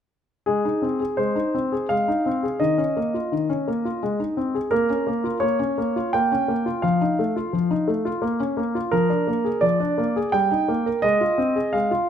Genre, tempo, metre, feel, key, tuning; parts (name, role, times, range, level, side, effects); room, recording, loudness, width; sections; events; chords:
classical-period piano sonatina; 86 BPM; 3/4; straight; Ab major; A4 = 440 Hz
clear concert grand piano; solo; 0.5-12.1 s; Eb3 to G5; -20 LUFS; equal
moderate recital hall reverb, RT60 1.3 s; close, detailed microphones; -20 LUFS; side -8 dB against mid
0.5-12.1 A section
0.5 Ab; 2.6 Ebsus2; 4.0 Ab; 4.7 Bbm; 6.8 F7; 8.2 Bbm; 8.9 Bb7/F; 10.3 Eb/G; 11.0 Fm/Ab